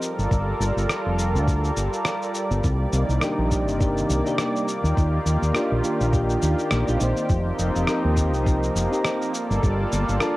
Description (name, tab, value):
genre	sunset chillout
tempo	103 BPM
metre	4/4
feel	swing 57% on 16ths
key	G minor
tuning	A4 = 439 Hz
part	lush unison pad	sustained chords	0.0-10.4 s	C3 to D5	-26 LUFS	equal	chorus
part	electronic shaker and rim click	drums	0.0-10.3 s	none	-30 LUFS	equal	cassette tape
part	fingered electric bass	bass	0.2-10.2 s	F1 to Eb2	-23 LUFS	equal	none
part	electronic kick drum	drums	0.3-9.8 s	none	-22 LUFS	equal	cassette tape
part	soft electric-piano-like synth keys	accompaniment	3.2-10.4 s	Bb3 to C5	-26 LUFS	equal	chorus, auto-pan, vintage 12-bit sampler grit, tape echo
room	moderate spring reverb, RT60 2.4 s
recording	home recording on cassette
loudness	-20 LUFS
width	side -18 dB against mid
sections	0.0-10.4 A section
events	none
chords	0.0 Gm9; 2.6 Cm9; 4.7 Ebmaj9; 7.3 F7sus4; 9.3 Gm9